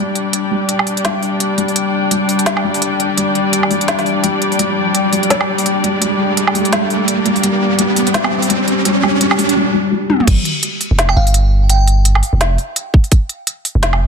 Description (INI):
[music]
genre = half-time drum and bass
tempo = 169 BPM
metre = 4/4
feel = swing 58% on 16ths, half-time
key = unclear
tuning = A4 = 439 Hz
[part]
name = muted studio string section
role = sustained chords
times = 0.0-9.6 s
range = G3 to G5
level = -19 LUFS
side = left 2 dB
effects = sidechain pumping
[part]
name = felt-muted upright piano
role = arpeggios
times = 0.0-10.3 s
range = G3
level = -18 LUFS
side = left 2 dB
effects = low-pass filter, tape echo
[part]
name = riser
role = sound effects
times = 0.8-9.6 s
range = none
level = -20 LUFS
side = right 1 dB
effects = none
[part]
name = organic electronic drum kit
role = drums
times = 0.2-14.0 s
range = crash cymbal, hi-hat, snare drum, toms, woodblock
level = -17 LUFS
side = equal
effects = overdrive
[part]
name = long sustained 808-style bass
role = bass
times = 10.3-14.1 s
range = F1 to G1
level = -12 LUFS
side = equal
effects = tube saturation
[part]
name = electronic kick drum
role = drums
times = 10.3-10.4, 12.9-13.2 s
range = none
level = -10 LUFS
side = equal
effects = none
[part]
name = glassy synth bell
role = melody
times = 11.1-12.0 s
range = F5 to G5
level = -22 LUFS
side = right 1 dB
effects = chorus, tremolo, tape echo
[sound]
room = moderate echo chamber reverb, RT60 1.5 s, digital ambience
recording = dense, heavily limited modern master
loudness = -12 LUFS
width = side -6 dB against mid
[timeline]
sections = 0.0-10.3 A section; 10.3-14.1 B section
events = build-up 0.0-10.3; riser 0.8-9.6; drum fill 10.1; drop 10.3-14.1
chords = 0.0 G5